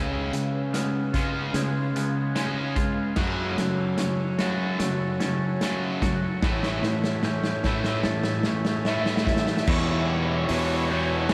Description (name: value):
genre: post-rock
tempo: 74 BPM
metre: 4/4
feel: straight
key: unclear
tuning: A4 = 439 Hz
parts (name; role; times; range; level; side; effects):
- hand-pumped harmonium; sustained chords; 0.0-11.3 s; C#3 to F#5; -38 LUFS; equal; none
- glockenspiel with rubber mallets; arpeggios; 0.0-11.3 s; E6 to A6; -41 LUFS; equal; diffuse ambient delay
- twangy electric guitar; arpeggios; 0.0-11.3 s; E2 to F#4; -38 LUFS; equal; vibrato effect, diffuse ambient delay
- distorted electric guitar; riff; 0.0-11.3 s; E2 to C#4; -31 LUFS; equal; overdrive
- growling fingered electric bass; bass; 0.0-11.3 s; A1 to F#3; -31 LUFS; equal; overdrive
- loose indie drum kit; drums; 0.3-11.3 s; crash cymbal, hi-hat, kick drum, snare drum; -31 LUFS; equal; none
- raw garage guitar; melody; 8.9-11.3 s; C#5 to E5; -32 LUFS; equal; overdrive, subtle chorus, diffuse ambient delay
- distorted electric guitar; riff; 9.7-11.3 s; E2 to E3; -33 LUFS; equal; none
room: wet huge ambient reverb, RT60 7.9 s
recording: dreamy mix soaked in reverb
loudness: -25 LUFS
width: mono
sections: 0.0-9.7 A section; 9.7-11.3 B section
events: build-up 0.0-9.7; drum fill 0.0-9.7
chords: 0.0 C#7; 3.2 F#m; 6.4 A; 9.7 Em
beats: 0.74 1.55 2.37 | 3.18 4.00 4.81 5.62 | 6.43 7.25 8.06 8.87 | 9.68 10.49 11.31